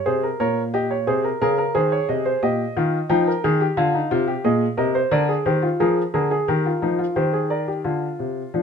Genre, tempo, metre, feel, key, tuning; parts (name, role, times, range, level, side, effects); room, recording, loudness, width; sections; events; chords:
classical, baroque-style 3-part fugue for grand piano; 89 BPM; 4/4; straight; A4 = 440 Hz
warm baby grand piano; solo; 0.0-8.6 s; Bb2 to G5; -19 LUFS; equal
moderate stone room reverb, RT60 1.0 s; minimal, uncompressed stereo recording; -19 LUFS; side -6 dB against mid
0.0-7.8 A section
0.0 Eb; 1.1 Ab/C; 2.4 Eb/Bb; 3.8 Fm7; 5.1 Bb/D; 6.5 Eb; 7.8 Csus4